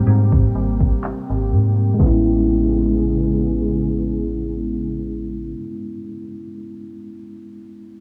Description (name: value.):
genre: contemporary R&B.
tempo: 62 BPM.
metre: 4/4.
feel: swing 54% on 16ths.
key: unclear.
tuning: A4 = 440 Hz.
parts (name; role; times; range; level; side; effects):
mellow tine electric piano; accompaniment; 0.0-8.0 s; G3 to C5; -25 LUFS; equal; none.
ethereal airy pad; sustained chords; 0.0-5.5 s; B#2 to G#4; -28 LUFS; equal; ensemble chorus, built-in reverb.
metallic FM bass; bass; 0.0-5.5 s; G#1 to G#2; -22 LUFS; equal; none.
smooth R&B drum kit; drums; 0.3-2.2 s; crash cymbal, handclaps, kick drum; -20 LUFS; equal; none.
room: little or no reverb.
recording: low-pass filter, small room ambience.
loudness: -19 LUFS.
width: mono.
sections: 0.0-2.0 A section; 2.0-5.9 B section.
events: tine electric piano solo 0.0-2.0; filter sweep 0.0-2.0.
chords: 0.0 G#maj9; 2.0 Amaj9.